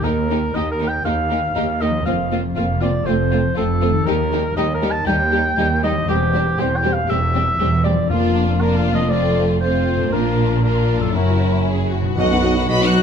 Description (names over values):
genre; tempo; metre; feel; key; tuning
cinematic, heroic adventure film score; 119 BPM; 4/4; straight; unclear; A4 = 440 Hz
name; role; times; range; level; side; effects
mellow cor anglais; second line; 0.0-11.7 s; F4 to A5; -22 LUFS; right 1 dB; none
rich symphonic violin section; second line; 0.0-13.0 s; C4 to F#5; -27 LUFS; left 3 dB; none
dark symphonic viola section; accompaniment; 0.0-13.0 s; G3 to F#4; -24 LUFS; right 1 dB; none
concert harp; arpeggios; 0.0-13.0 s; Gb2 to Db5; -27 LUFS; left 12 dB; none
rich symphonic double bass section; bass; 0.0-13.0 s; E1 to Eb2; -22 LUFS; right 2 dB; none
warm symphonic cello section; bass; 0.0-13.0 s; Eb2 to F#3; -24 LUFS; right 1 dB; none
rich symphonic violin section; melody; 0.1-13.0 s; F4 to F#6; -28 LUFS; left 5 dB; none
timpani; percussion; 8.1-8.8, 12.2-12.9 s; F2 to B2; -26 LUFS; equal; none
warm trombone section; sustained chords; 12.2-13.0 s; B2 to B3; -27 LUFS; right 4 dB; none
bright trumpet; stabs; 12.2-13.0 s; F#4; -24 LUFS; left 1 dB; none
clear tuba; bass; 12.2-13.0 s; B1; -24 LUFS; right 4 dB; none
room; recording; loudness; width
moderate recital hall reverb, RT60 1.6 s; none; -16 LUFS; side -7 dB against mid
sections
0.0-12.2 A section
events
none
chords
0.0 Ebadd9; 2.1 Fsus4; 3.1 F; 4.1 Eb; 6.1 C/E; 8.1 Bb/F; 10.1 Bb; 11.2 Gb7; 12.2 B